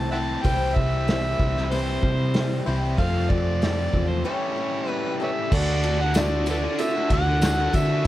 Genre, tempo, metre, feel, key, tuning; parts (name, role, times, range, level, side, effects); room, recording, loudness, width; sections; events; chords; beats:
folk rock and heartland rock; 95 BPM; 4/4; straight; C major; A4 = 440 Hz
overdriven harmonica; melody; 0.0-8.1 s; A4 to A5; -27 LUFS; equal
picked swing-style acoustic guitar; accompaniment; 0.0-8.1 s; A2 to C5; -31 LUFS; left 4 dB
biting overdriven guitar; riff; 0.0-8.1 s; F2 to F#4; -28 LUFS; equal
hollow-body short-scale picked electric bass; bass; 0.0-8.0 s; C2 to D3; -25 LUFS; equal
vintage drum kit; drums; 0.4-8.1 s; crash cymbal, hi-hat, kick drum, ride cymbal, snare drum; -26 LUFS; equal
warm upright piano; accompaniment; 5.5-8.1 s; D4 to D5; -37 LUFS; right 5 dB
tambourine; percussion; 5.5-8.1 s; -41 LUFS; right 2 dB
light reverb; -21 LUFS; side -14 dB against mid
0.0-5.5 A section; 5.5-8.1 B section
break 4.3-5.5
0.5 C; 3.0 Fadd9; 4.3 A7; 5.5 D
| 0.45 1.08 1.72 2.35 | 2.99 3.62 4.25 4.89 | 5.52 6.16 6.79 7.42 | 8.05